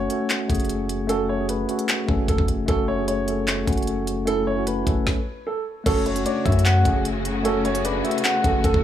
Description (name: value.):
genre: hip hop, trap.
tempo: 151 BPM.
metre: 4/4.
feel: half-time.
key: F# minor.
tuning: A4 = 440 Hz.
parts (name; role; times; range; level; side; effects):
dark concert grand piano; melody; 0.0-8.8 s; A4 to C#5; -27 LUFS; right 2 dB; tape echo.
mellow tine electric piano; accompaniment; 0.0-8.8 s; A3 to A4; -25 LUFS; equal; medium stereo tremolo.
long sustained 808-style bass; bass; 0.0-8.8 s; F#1 to F#2; -26 LUFS; equal; none.
trap drum kit; drums; 0.1-8.8 s; crash cymbal, handclaps, hi-hat, kick drum, snare drum; -24 LUFS; equal; none.
soft octave-layered synth lead; second line; 5.9-8.6 s; C#5 to F#5; -26 LUFS; left 3 dB; chorus.
dark symphonic string section; sustained chords; 5.9-8.8 s; C#3 to F#4; -30 LUFS; left 2 dB; none.
room: little or no reverb.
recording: small room ambience.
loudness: -20 LUFS.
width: side -10 dB against mid.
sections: 0.0-5.9 A section; 5.9-8.8 B section.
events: stop 5.1-5.9.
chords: 0.0 F#m.